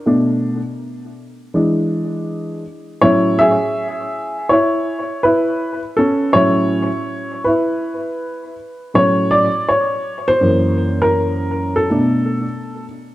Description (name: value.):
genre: hip hop.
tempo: 81 BPM.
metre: 4/4.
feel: swing 61% on 16ths.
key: A major.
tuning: A4 = 440 Hz.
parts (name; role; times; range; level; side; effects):
dark upright piano; solo; 0.1-12.8 s; F#2 to E5; -15 LUFS; equal; tape echo.
room: light reverb.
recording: dark, warm production.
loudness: -15 LUFS.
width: side -16 dB against mid.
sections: 0.0-8.9 A section; 8.9-13.1 B section.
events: upright piano solo 0.0-8.9, 8.9-13.1.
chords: 0.1 Bm7; 1.5 E7; 3.0 A69; 8.9 A6; 10.4 F#7#11; 11.9 Bm7.